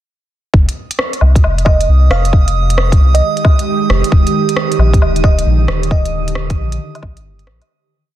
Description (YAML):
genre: future garage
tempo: 134 BPM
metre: 4/4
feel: swing 65% on 16ths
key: F dorian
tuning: A4 = 440 Hz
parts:
  - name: soft dub sub bass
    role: bass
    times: 0.5-7.6 s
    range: Eb1 to C2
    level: -13 LUFS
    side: equal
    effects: sidechain pumping
  - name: electronic kick drum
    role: drums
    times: 0.5-7.1 s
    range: none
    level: -11 LUFS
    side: equal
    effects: vintage 12-bit sampler grit
  - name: drifting glass-harmonics texture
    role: texture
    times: 1.4-7.7 s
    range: Eb6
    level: -24 LUFS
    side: right 11 dB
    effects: chorus, built-in reverb
  - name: organic electronic drum kit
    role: drums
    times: 0.7-7.7 s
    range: hi-hat, rim click, woodblock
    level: -20 LUFS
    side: left 1 dB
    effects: vintage 12-bit sampler grit
  - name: bell-like FM electric piano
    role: melody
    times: 1.6-6.3 s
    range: Eb5 to F5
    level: -22 LUFS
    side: right 2 dB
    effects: chorus, tremolo, vintage 12-bit sampler grit, tape echo
  - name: ethereal airy pad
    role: sustained chords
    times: 3.1-7.7 s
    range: D3 to G4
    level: -19 LUFS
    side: right 4 dB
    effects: ensemble chorus, built-in reverb, sidechain pumping
room: little or no reverb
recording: dense, heavily limited modern master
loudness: -10 LUFS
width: side -13 dB against mid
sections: 0.5-7.7 groove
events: fade-out 5.3-7.7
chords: 0.5 Fm9; 4.1 Ebmaj7